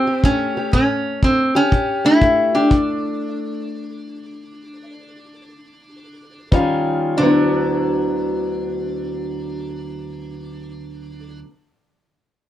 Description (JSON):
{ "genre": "acoustic country blues, solo or duo", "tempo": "88-121 BPM", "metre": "4/4", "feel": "swing 65% on 8ths", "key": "D major", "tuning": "A4 = 443 Hz", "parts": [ { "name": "metal-body resonator slide guitar", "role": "melody", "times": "0.0-11.4 s", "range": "C4 to E4", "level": "-18 LUFS", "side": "equal", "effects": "none" }, { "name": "fingerpicked steel-string acoustic guitar", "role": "accompaniment", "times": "0.0-11.5 s", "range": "D2 to G4", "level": "-22 LUFS", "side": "left 1 dB", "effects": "none" }, { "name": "kick drum", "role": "drums", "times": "0.2-2.9, 6.5-6.7 s", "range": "none", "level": "-17 LUFS", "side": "equal", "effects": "none" } ], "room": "small room reverb", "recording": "dry, close 1970s-style studio recording", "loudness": "-16 LUFS", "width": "side -12 dB against mid", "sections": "0.0-7.2 A section; 7.2-12.5 B section", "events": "slowing down 2.7-7.2; stop 2.7-6.5", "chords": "0.0 A7; 2.7 N.C.; 6.5 Eb9; 7.2 D69", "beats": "0.24 | 0.73 1.23 1.72 2.21 | 2.71 3.21 3.71 4.23 | 4.76 5.32 5.90 6.52 | 7.18 7.86 8.55 9.23 | 9.91 10.60 11.28" }